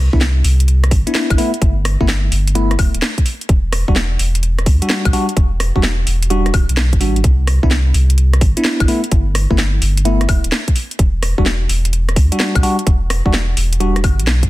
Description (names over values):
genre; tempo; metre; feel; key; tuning
UK garage, two-step garage; 128 BPM; 4/4; swing 67% on 16ths; E minor; A4 = 440 Hz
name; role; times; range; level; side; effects
saturated sub bass; bass; 0.0-14.5 s; D1 to E2; -15 LUFS; equal; sidechain pumping
bell-like tine electric piano; stabs; 0.1-14.0 s; G3 to F#4; -20 LUFS; left 1 dB; phaser, digital delay
electronic kick drum; drums; 0.1-14.5 s; none; -14 LUFS; equal; none
garage drum kit; drums; 0.2-14.5 s; hi-hat, rim click, snare drum, woodblock; -20 LUFS; equal; soft clipping on snare
room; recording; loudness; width
little or no reverb; dense, heavily limited modern master; -12 LUFS; side -17 dB against mid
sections
0.0-14.5 A section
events
none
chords
0.0 Cmaj9; 1.4 G69; 3.3 Em9; 7.2 Cmaj9; 8.9 G69; 10.8 Em9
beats
0.21 0.68 1.15 | 1.62 2.08 2.55 3.02 | 3.49 3.96 4.43 4.90 | 5.37 5.83 6.30 6.77 | 7.24 7.71 8.18 8.65 | 9.12 9.59 10.05 10.52 | 10.99 11.46 11.93 12.40 | 12.87 13.34 13.80 14.27